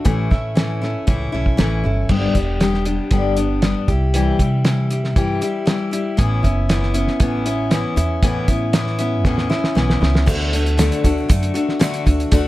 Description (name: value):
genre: folk rock and heartland rock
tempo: 118 BPM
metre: 4/4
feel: straight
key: D major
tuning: A4 = 440 Hz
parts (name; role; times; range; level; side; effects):
- picked steel-string acoustic guitar; accompaniment; 0.0-12.5 s; G2 to G4; -20 LUFS; left 2 dB; none
- upright bass; bass; 0.1-12.5 s; E1 to C3; -20 LUFS; right 1 dB; none
- cloth-damped thuddy drum kit; drums; 0.1-12.4 s; crash cymbal, hi-hat, kick drum, snare drum; -18 LUFS; right 1 dB; none
- tube shaker; percussion; 10.3-12.4 s; none; -38 LUFS; right 11 dB; none
room: light reverb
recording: dark, warm production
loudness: -16 LUFS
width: side -16 dB against mid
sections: 0.0-2.1 A section; 2.1-10.3 B section; 10.3-12.5 C section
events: drum fill 9.3-10.3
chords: 0.1 A; 2.1 G; 3.9 C; 6.2 Aadd9; 10.3 D